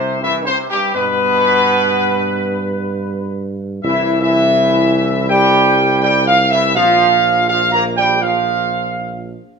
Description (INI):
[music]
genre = classical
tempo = 83 BPM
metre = 4/4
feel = straight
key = C major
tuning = A4 = 443 Hz
[part]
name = mellow trumpet section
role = melody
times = 0.0-9.3 s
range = G4 to Bb5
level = -15 LUFS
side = equal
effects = none
[part]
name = dark French horn section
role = sustained chords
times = 0.0-9.3 s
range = G3 to Bb4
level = -22 LUFS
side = left 5 dB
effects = none
[part]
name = mellow trombone section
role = sustained chords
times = 0.0-9.3 s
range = G2 to Bb3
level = -20 LUFS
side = right 2 dB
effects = none
[part]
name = mellow tuba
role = bass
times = 0.0-9.4 s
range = Bb1 to G2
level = -21 LUFS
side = right 3 dB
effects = none
[sound]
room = moderate large studio reverb, RT60 1.2 s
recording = minimal, uncompressed stereo recording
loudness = -12 LUFS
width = side -5 dB against mid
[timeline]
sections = 0.0-9.6 A section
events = none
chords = 0.0 C5; 1.0 G; 3.8 C; 6.8 Bb5